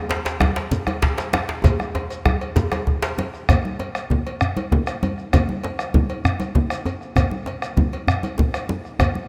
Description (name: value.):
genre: west african traditional, West African drum ensemble.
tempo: 130 BPM (dotted quarters).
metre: 12/8.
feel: straight.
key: none.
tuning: none.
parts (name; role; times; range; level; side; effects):
cowbell; percussion; 0.1-9.1 s; none; -35 LUFS; equal; none.
djembe; percussion; 0.1-9.1 s; none; -27 LUFS; equal; none.
djembe; percussion; 0.1-3.2 s; none; -28 LUFS; equal; none.
bombo; percussion; 0.3-9.1 s; none; -25 LUFS; equal; none.
shekere; percussion; 0.3-9.1 s; none; -32 LUFS; equal; none.
congas; percussion; 0.4-9.3 s; none; -29 LUFS; equal; none.
room: moderate lush hall reverb, RT60 3.1 s.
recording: rough home demo mix.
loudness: -22 LUFS.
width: mono.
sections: 0.0-3.5 A section; 3.5-9.3 B section.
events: drum fill 1.6-3.5.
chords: none.